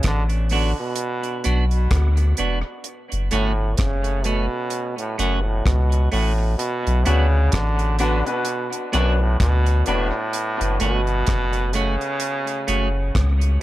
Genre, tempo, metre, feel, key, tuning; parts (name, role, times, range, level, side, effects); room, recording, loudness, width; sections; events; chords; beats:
dub reggae; 64 BPM; 4/4; swing 57% on 16ths; B minor; A4 = 440 Hz
brilliant trombone; melody; 0.0-13.6 s; F#2 to D3; -25 LUFS; right 1 dB; tape echo
soft dub sub bass; bass; 0.0-13.6 s; E1 to D2; -20 LUFS; equal
deep reggae drum kit; drums; 0.0-13.6 s; hi-hat, kick drum, rim click; -25 LUFS; equal
clean electric guitar; accompaniment; 0.5-12.9 s; A3 to F#4; -28 LUFS; right 3 dB; wide subtle chorus, tape echo
bright baby grand piano; stabs; 7.1-10.1 s; D4 to B4; -28 LUFS; left 4 dB; tape echo
light reverb, small room ambience; echo-heavy mix; -18 LUFS; side -15 dB against mid
0.0-13.6 A section
break 10.3-13.6
0.0 Bm; 2.8 F#m; 6.6 Bm; 10.3 F#m
0.04 0.97 1.91 | 2.85 3.78 4.72 5.65 | 6.59 7.53 8.46 9.40 | 10.34 11.27 12.21 13.15